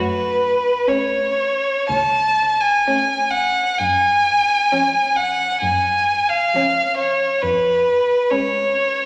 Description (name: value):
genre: classical, slow romantic movement for string quartet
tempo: 57-68 BPM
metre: 4/4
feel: rubato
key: F# minor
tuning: A4 = 435 Hz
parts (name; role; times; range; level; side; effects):
- clear violin; melody; 0.0-9.1 s; B4 to A5; -18 LUFS; equal; none
- warm cello; bass; 0.0-8.1 s; C#2 to F#2; -33 LUFS; equal; none
- rich violin; second line; 0.9-9.1 s; C#4; -28 LUFS; equal; none
- warm viola; accompaniment; 0.9-9.1 s; E#3 to A3; -37 LUFS; equal; none
room: wet scoring stage reverb, RT60 1.8 s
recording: none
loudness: -18 LUFS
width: mono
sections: 0.0-9.1 A section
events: none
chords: 0.0 F#m; 3.8 C#/F#; 7.4 C#7/E#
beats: 0.89 1.90 2.87 | 3.79 4.73 5.64 6.54 | 7.42 8.31